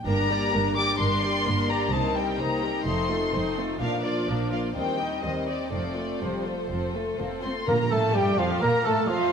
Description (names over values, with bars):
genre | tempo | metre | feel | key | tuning
quick classical-period movement for symphony orchestra | 127 BPM | 4/4 | straight | Bb major | A4 = 443 Hz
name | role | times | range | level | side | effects
warm chamber violin section | melody | 0.1-9.3 s | C5 to D6 | -29 LUFS | left 4 dB | none
warm chamber violin section | second line | 0.1-9.3 s | D4 to Eb5 | -33 LUFS | left 2 dB | none
rich studio viola section | accompaniment | 0.1-9.3 s | Eb3 to F4 | -32 LUFS | right 2 dB | none
warm French horn section | sustained chords | 0.1-9.3 s | F3 to Eb4 | -31 LUFS | left 3 dB | none
dark chamber cello section | bass | 0.1-9.3 s | Eb2 to C4 | -32 LUFS | right 2 dB | none
warm chamber double bass section | bass | 0.1-9.3 s | F1 to Bb2 | -32 LUFS | right 3 dB | none
mellow cor anglais | second line | 7.7-9.3 s | F4 to Bb4 | -31 LUFS | right 4 dB | none
mellow small flute group | second line | 7.7-9.3 s | F5 to Bb5 | -31 LUFS | right 5 dB | none
warm clarinet | second line | 7.7-9.3 s | F4 to Bb4 | -30 LUFS | left 1 dB | none
mellow bassoon | accompaniment | 7.7-9.3 s | F3 to Bb3 | -29 LUFS | right 2 dB | none
timpani | percussion | 7.7-8.3 s | Bb2 | -37 LUFS | right 2 dB | none
room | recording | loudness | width
wet scoring stage reverb, RT60 1.6 s | none | -23 LUFS | side -6 dB against mid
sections
0.0-7.7 A section; 7.7-9.3 B section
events
none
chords
0.1 Gm; 1.9 Cm7; 2.9 F7; 3.8 Bb; 4.8 Cm/Eb; 5.7 F; 7.7 Bb5